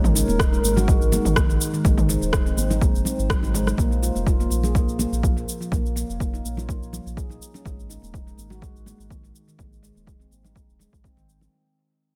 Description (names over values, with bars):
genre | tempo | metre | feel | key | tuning
afro house | 124 BPM | 4/4 | swing 54% on 16ths | unclear | A4 = 442 Hz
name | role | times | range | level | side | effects
dark analog pad | sustained chords | 0.0-11.5 s | Ab3 to Db5 | -32 LUFS | equal | chorus, sidechain pumping
handpan | arpeggios | 0.0-11.5 s | Eb3 to Ab4 | -32 LUFS | equal | sidechain pumping, dub echo
warm sub bass | bass | 0.0-11.5 s | Eb1 to Bb1 | -29 LUFS | equal | sidechain pumping
deep house drum kit | drums | 0.0-11.5 s | rim click, shaker, toms | -30 LUFS | equal | none
congas | percussion | 0.3-11.5 s | none | -33 LUFS | equal | none
electronic kick drum | drums | 0.4-11.1 s | none | -25 LUFS | equal | none
room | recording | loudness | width
digital ambience | none | -22 LUFS | mono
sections
0.0-11.5 A section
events
fade-out 0.0-11.5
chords
0.0 Ab; 3.8 Bbmadd9; 7.7 Ab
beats
0.39 0.88 1.36 | 1.85 2.33 2.81 3.30 | 3.78 4.26 4.75 5.23 | 5.72 6.20 6.68 7.17 | 7.65 8.14 8.62 9.10 | 9.59 10.07 10.56 11.04